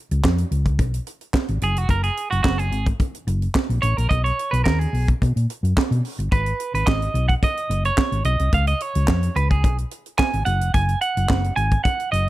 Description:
disco; 108 BPM; 4/4; straight; A4 = 440 Hz
hollow-body short-scale fingered electric bass; bass; 0.1-12.3 s; E#1 to B2; -21 LUFS; equal
tight funk drum kit; drums; 0.1-12.3 s; handclaps, hi-hat, kick drum, snare drum; -22 LUFS; equal
clean electric guitar; accompaniment; 1.6-12.3 s; F#4 to G#5; -23 LUFS; right 4 dB
small room reverb; dark, warm production; -18 LUFS; side -16 dB against mid
0.0-12.3 A section
clean electric guitar solo 0.0-12.3
0.0 C#7; 1.6 F#add9; 4.1 Bmaj7; 6.3 G#m; 8.5 C#7; 10.5 F#sus2

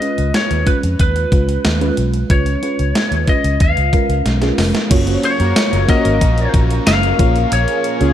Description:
1980s-style pop; 92 BPM; 4/4; straight; F# major; A4 = 441 Hz
lightly driven lead guitar; melody; 0.0-8.1 s; B4 to E#5; -20 LUFS; left 2 dB; tape echo
FM electric piano with soft pad layer; accompaniment; 0.0-8.1 s; G#3 to C#5; -20 LUFS; right 2 dB; chorus
clean 12-bit digital drum machine; drums; 0.0-8.1 s; crash cymbal, hi-hat, kick drum, snare drum, tambourine; -17 LUFS; equal; gated reverb
vintage muted fingered electric bass; bass; 0.2-8.1 s; E#1 to F#2; -17 LUFS; equal
overdriven electric guitar; accompaniment; 4.9-8.1 s; F#2 to A#3; -28 LUFS; equal; wide subtle chorus
glassy FM pad; sustained chords; 5.3-8.1 s; A#4 to C#6; -25 LUFS; left 3 dB; ensemble chorus, built-in reverb
analog synth brass; stabs; 5.4-8.1 s; A#3 to A#4; -23 LUFS; left 1 dB; chorus, tape echo
light reverb, digital ambience; -13 LUFS; side -11 dB against mid
0.0-4.9 A section; 4.9-8.1 B section
drum fill 4.3-4.9
0.0 C#7; 4.9 F#maj7; 7.2 A#m7

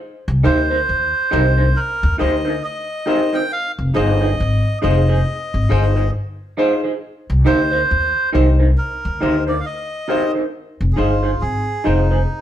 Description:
reggae; 68 BPM; 4/4; swing 60% on 16ths; F dorian; A4 = 440 Hz
upright bass; bass; 0.3-12.2 s; F1 to Eb2; -17 LUFS; equal
electric guitar at the edge of break-up; accompaniment; 0.4-12.2 s; Eb4 to C5; -22 LUFS; right 3 dB; phaser
warm upright piano; stabs; 0.4-12.0 s; Eb4 to C5; -21 LUFS; left 2 dB
melodica; melody; 0.5-12.4 s; Eb4 to G5; -22 LUFS; right 2 dB
moderate stone room reverb, RT60 1.1 s; band playing live in one room; -15 LUFS; side -11 dB against mid
0.0-10.5 A section; 10.5-12.4 B section
melodica solo 10.5-12.4
0.0 Cm7; 3.5 Fm7; 7.0 Cm7; 10.5 Fm7

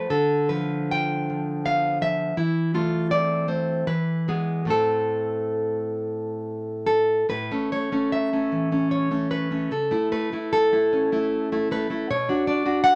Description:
romantic piece for solo classical guitar; 67-86 BPM; 3/4; rubato; A minor, A major from 7.3 s; A4 = 439 Hz
nylon-string guitar; solo; 0.0-13.0 s; A2 to G5; -24 LUFS; equal
light reverb; -24 LUFS; mono
0.0-7.3 A section; 7.3-13.0 B section
0.1 Bdim/D; 2.4 Am/E; 3.9 E; 4.7 Am; 7.3 A; 9.7 A/C#; 12.1 Bm

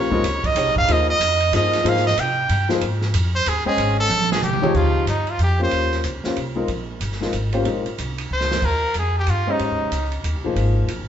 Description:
modal jazz; 186 BPM; 3/4; swing 62% on 8ths; Eb mixolydian; A4 = 439 Hz
brilliant trumpet; melody; 0.0-6.0, 8.3-10.1 s; Eb4 to G5; -21 LUFS; right 2 dB
warm grand piano; accompaniment; 0.0-10.9 s; C3 to G5; -24 LUFS; left 3 dB
upright bass; bass; 0.0-11.1 s; G1 to C3; -22 LUFS; equal
open jazz drum kit; drums; 0.1-11.0 s; crash cymbal, hi-hat, kick drum, ride cymbal, snare drum, toms; -28 LUFS; right 3 dB
moderate large studio reverb, RT60 1.3 s; band playing live in one room, nothing above 7.8 kHz; -18 LUFS; side -9 dB against mid
0.0-4.7 A section; 4.7-11.1 B section
trumpet solo 0.0-4.7; drum fill 4.1-4.7, 8.3-8.6
0.0 Eb13; 0.9 Abadd9/Eb; 4.7 Eb13; 8.6 Abadd9

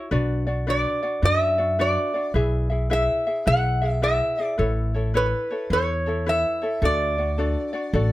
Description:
Hawaiian; 107 BPM; 4/4; swing 64% on 8ths; A4 = 440 Hz
ukulele; accompaniment; 0.0-8.1 s; D4 to E5; -27 LUFS; left 1 dB
upright bass; bass; 0.1-8.1 s; A1 to F#2; -24 LUFS; equal
metal-body resonator slide guitar; melody; 0.7-8.1 s; B4 to F#5; -23 LUFS; equal; slapback echo
little or no reverb; close, detailed microphones; -20 LUFS; side -16 dB against mid
0.0-8.1 A section
0.1 Bm; 2.3 E/B; 4.6 Aadd9; 6.8 D

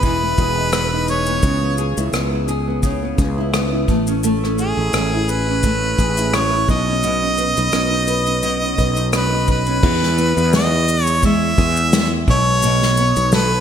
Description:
acoustic pop; 86 BPM; 4/4; swing 55% on 16ths; E major; A4 = 440 Hz
clear harmonica; melody; 0.0-13.6 s; G#4 to E5; -19 LUFS; equal; ping-pong delay
nylon-string guitar; accompaniment; 0.0-13.6 s; B2 to B4; -21 LUFS; equal; double-tracked left and right
fretless electric bass; bass; 0.0-13.6 s; E1 to E2; -21 LUFS; equal
unplugged drum kit; drums; 0.0-13.5 s; crash cymbal, kick drum, rim click, shaker, snare drum; -21 LUFS; equal; gated reverb
moderate lush hall reverb, RT60 2.7 s; bright 1980s-style digital production; -15 LUFS; side -8 dB against mid
0.0-9.8 A section; 9.8-13.6 B section
0.0 Emaj7; 1.4 C#m7; 3.9 Amaj7; 6.7 Badd9; 9.8 Emaj7; 12.3 B5

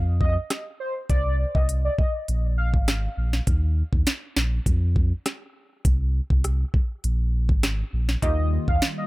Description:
dancehall; 101 BPM; 4/4; straight; A4 = 440 Hz
sub bass with octave; bass; 0.0-8.8 s; Ab1 to F2; -23 LUFS; equal
warm velvety synth lead; melody; 0.2-2.7, 8.2-9.1 s; C5 to F5; -29 LUFS; equal; chorus, analog delay
afro-pop drum kit; drums; 0.2-9.0 s; hi-hat, kick drum, rim click, snare drum; -22 LUFS; equal
analog pluck; accompaniment; 8.2-8.8 s; Bb3 to G4; -34 LUFS; left 2 dB; chorus
hollow soft pad; sustained chords; 8.2-9.1 s; Eb3 to F4; -31 LUFS; left 3 dB; ensemble chorus, sidechain pumping
little or no reverb; echo-heavy mix; -21 LUFS; side -20 dB against mid
0.0-9.1 A section
0.0 F5; 1.1 Cmadd9; 2.3 Absus2; 3.5 Eb5; 4.7 N.C.; 7.0 Absus2; 8.2 Ebadd9

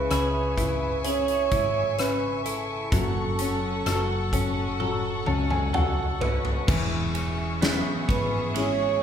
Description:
pop ballad; 64 BPM; 4/4; straight; E major; A4 = 440 Hz
breathy flugelhorn; melody; 0.0-9.0 s; A4 to C#5; -28 LUFS; right 4 dB
warm upright piano; accompaniment; 0.0-9.0 s; C#3 to A5; -30 LUFS; left 4 dB
rich studio string section; sustained chords; 0.0-9.0 s; G#4 to C#6; -33 LUFS; left 3 dB
twelve-string electric guitar; arpeggios; 0.0-9.0 s; F#2 to A4; -32 LUFS; right 3 dB
hollow-body short-scale fingered electric bass; bass; 0.0-9.0 s; E1 to C#2; -30 LUFS; equal
huge arena drum kit; drums; 0.1-8.8 s; crash cymbal, hi-hat, kick drum, ride cymbal, rim click, snare drum, toms; -29 LUFS; equal
wet recital hall reverb, RT60 1.6 s; recorded in a church or concert hall; -23 LUFS; side -8 dB against mid
0.0-6.7 A section; 6.7-9.0 B section
drum fill 4.8-6.7; upright piano fill 4.8-6.7
0.0 C#m; 2.9 F#m; 6.7 E6

